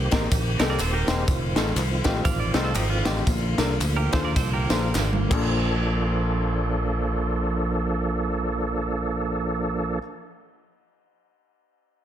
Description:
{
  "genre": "uptempo gospel",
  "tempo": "93-125 BPM",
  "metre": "4/4",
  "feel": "swing 58% on 8ths",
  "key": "Bb major",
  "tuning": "A4 = 435 Hz",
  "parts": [
    { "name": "warm grand piano", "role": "accompaniment", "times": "0.0-10.0 s", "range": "Bb1 to C5", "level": "-30 LUFS", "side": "left 4 dB", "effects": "none" },
    { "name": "tonewheel organ", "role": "sustained chords", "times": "0.0-10.0 s", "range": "D3 to A4", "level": "-28 LUFS", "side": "right 2 dB", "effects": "fast rotary speaker, chorus vibrato" },
    { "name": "fingered electric bass", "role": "bass", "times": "0.0-10.0 s", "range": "Eb1 to Eb2", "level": "-27 LUFS", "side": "equal", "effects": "none" },
    { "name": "crisp fusion drum kit", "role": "drums", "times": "0.1-5.4 s", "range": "crash cymbal, kick drum, ride cymbal, snare drum, toms", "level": "-26 LUFS", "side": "equal", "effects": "none" },
    { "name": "tambourine and handclaps", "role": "percussion", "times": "0.1-5.9 s", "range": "none", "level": "-37 LUFS", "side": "right 1 dB", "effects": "none" },
    { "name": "clean electric guitar", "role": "second line", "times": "0.6-5.4 s", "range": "D4 to F5", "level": "-31 LUFS", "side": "right 7 dB", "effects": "none" }
  ],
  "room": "light reverb, small room ambience",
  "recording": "dense, heavily limited modern master",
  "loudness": "-22 LUFS",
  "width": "side -10 dB against mid",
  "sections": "0.0-5.6 A section; 5.6-10.7 B section",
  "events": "slowing down 1.3-5.6; drum fill 5.0-5.6",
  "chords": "0.0 Cm7; 1.3 F7; 3.3 Bbmaj7"
}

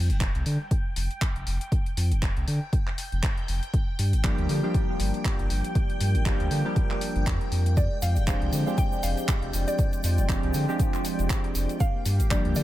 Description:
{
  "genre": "deep house",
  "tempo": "119 BPM",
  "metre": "4/4",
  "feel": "swing 57% on 16ths",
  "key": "F dorian",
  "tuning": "A4 = 440 Hz",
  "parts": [
    { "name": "sub bass with octave", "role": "bass", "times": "0.0-12.6 s", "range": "F1 to D3", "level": "-25 LUFS", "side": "equal", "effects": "sidechain pumping" },
    { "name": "string machine, violins", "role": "texture", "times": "0.0-12.6 s", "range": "G5", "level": "-40 LUFS", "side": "left 1 dB", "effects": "ensemble chorus" },
    { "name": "deep house drum kit", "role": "drums", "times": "0.1-12.6 s", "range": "handclaps, hi-hat", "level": "-35 LUFS", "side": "equal", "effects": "overdrive" },
    { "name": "electronic kick drum", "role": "drums", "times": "0.2-12.4 s", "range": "none", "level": "-26 LUFS", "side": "equal", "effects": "none" },
    { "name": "warm analog keys", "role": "stabs", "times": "4.2-12.6 s", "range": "F3 to G4", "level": "-30 LUFS", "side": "right 1 dB", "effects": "chorus, phaser, sidechain pumping, dub echo" },
    { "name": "mallet-like synth pluck", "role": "melody", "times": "7.8-12.6 s", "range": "D5 to G5", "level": "-34 LUFS", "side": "equal", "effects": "chorus, tape echo" },
    { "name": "hollow soft pad", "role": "sustained chords", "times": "7.8-12.6 s", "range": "Ab3 to F5", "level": "-38 LUFS", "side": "left 2 dB", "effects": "chorus, sidechain pumping" },
    { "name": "egg shaker", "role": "percussion", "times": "7.8-12.6 s", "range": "none", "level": "-40 LUFS", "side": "right 5 dB", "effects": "none" }
  ],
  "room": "light reverb",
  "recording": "echo-heavy mix",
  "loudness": "-23 LUFS",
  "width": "side -14 dB against mid",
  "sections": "0.0-12.6 A section",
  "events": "none",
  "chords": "0.0 Fsus2; 3.7 Gm7; 7.8 Fm69; 11.8 Gm7"
}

